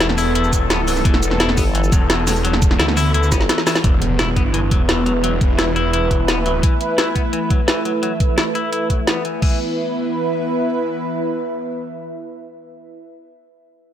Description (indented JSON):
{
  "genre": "dark technical drum and bass",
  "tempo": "172 BPM",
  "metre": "4/4",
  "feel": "straight",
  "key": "unclear",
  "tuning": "A4 = 440 Hz",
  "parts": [
    { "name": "sweeping resonant pad", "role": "sustained chords", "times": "0.0-13.0 s", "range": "E3 to B4", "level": "-22 LUFS", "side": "equal", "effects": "chorus, sidechain pumping" },
    { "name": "clean electric guitar", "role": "arpeggios", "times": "0.0-9.6 s", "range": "E3 to E4", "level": "-25 LUFS", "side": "left 5 dB", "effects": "sidechain pumping, low-pass filter, dub echo" },
    { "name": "snarling distorted saw bass", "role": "bass", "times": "0.0-6.6 s", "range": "E1 to D2", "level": "-20 LUFS", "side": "equal", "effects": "distortion, overdrive" },
    { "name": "drum and bass drum kit", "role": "drums", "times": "0.0-9.5 s", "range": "crash cymbal, hi-hat, shaker, snare drum", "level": "-20 LUFS", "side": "equal", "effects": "none" },
    { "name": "electronic kick drum", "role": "drums", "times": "0.5-9.5 s", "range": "none", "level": "-17 LUFS", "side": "equal", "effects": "none" },
    { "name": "formant-sweep wobble bass", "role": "bass", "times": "1.6-3.5 s", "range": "G1", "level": "-19 LUFS", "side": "equal", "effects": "chorus, tube saturation" },
    { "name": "impact", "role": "sound effects", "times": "3.9-5.2 s", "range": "none", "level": "-26 LUFS", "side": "equal", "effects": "none" },
    { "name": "airy breathy pad", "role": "texture", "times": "4.3-13.0 s", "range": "E4 to E5", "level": "-26 LUFS", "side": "right 1 dB", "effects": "chorus, sidechain pumping" }
  ],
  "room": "light reverb",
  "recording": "none",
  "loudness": "-15 LUFS",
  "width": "side -10 dB against mid",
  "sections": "0.0-3.8 A section; 3.8-9.4 B section; 9.4-12.2 C section",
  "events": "drop 0.0-3.8; drum fill 3.3-3.8; impact 3.8-5.2",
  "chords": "0.0 E5"
}